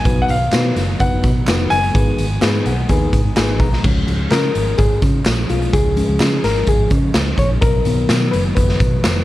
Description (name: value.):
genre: uptempo 1960s-style soul.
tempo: 127 BPM.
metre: 4/4.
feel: straight.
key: Db mixolydian.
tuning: A4 = 440 Hz.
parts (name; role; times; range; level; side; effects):
bright concert grand piano; melody; 0.0-3.3 s; F5 to Ab5; -22 LUFS; left 2 dB; plate reverb.
overdriven reed electric piano; accompaniment; 0.0-9.2 s; Eb3 to Bb5; -20 LUFS; left 3 dB; none.
raw garage drum kit; drums; 0.0-9.2 s; crash cymbal, hi-hat, kick drum, snare drum; -17 LUFS; equal; none.
tambourine and handclaps; percussion; 0.0-9.2 s; none; -31 LUFS; right 2 dB; none.
pipe organ, foundations; sustained chords; 0.1-9.2 s; Eb3 to Db4; -28 LUFS; right 3 dB; none.
vintage muted fingered electric bass; bass; 0.1-9.2 s; F1 to Db3; -19 LUFS; equal; none.
room: small room ambience.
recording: dark, warm production.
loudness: -14 LUFS.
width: side -16 dB against mid.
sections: 0.0-3.8 A section; 3.8-9.2 B section.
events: reed electric piano fill 2.4-3.8; reed electric piano solo 3.8-9.2.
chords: 0.0 Cb; 1.9 Abm; 3.8 Db; 7.6 Cb.